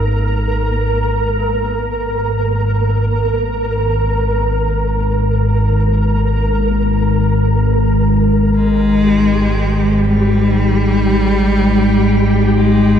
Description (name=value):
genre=ambient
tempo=free time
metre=none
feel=none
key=unclear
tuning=A4 = 440 Hz
part: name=dark detuned synth bell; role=arpeggios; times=0.0-0.7 s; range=C#4 to D#4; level=-36 LUFS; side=left 1 dB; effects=none
part: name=analog drone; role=drone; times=0.0-13.0 s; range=G#1 to G#2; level=-14 LUFS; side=equal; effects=chorus
part: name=flickering grainy texture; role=texture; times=0.0-13.0 s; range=G4 to A#4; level=-20 LUFS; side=right 1 dB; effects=built-in reverb
part: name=rich cello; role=melody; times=8.5-13.0 s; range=G3 to G#3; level=-17 LUFS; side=equal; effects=ping-pong delay
room=wet cathedral reverb, RT60 5.1 s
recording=dark, warm production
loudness=-12 LUFS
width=side -9 dB against mid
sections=0.0-13.0 A section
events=filter sweep on synth drone 0.0-13.0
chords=0.0 G#5; 0.5 N.C.; 8.5 G#5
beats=free time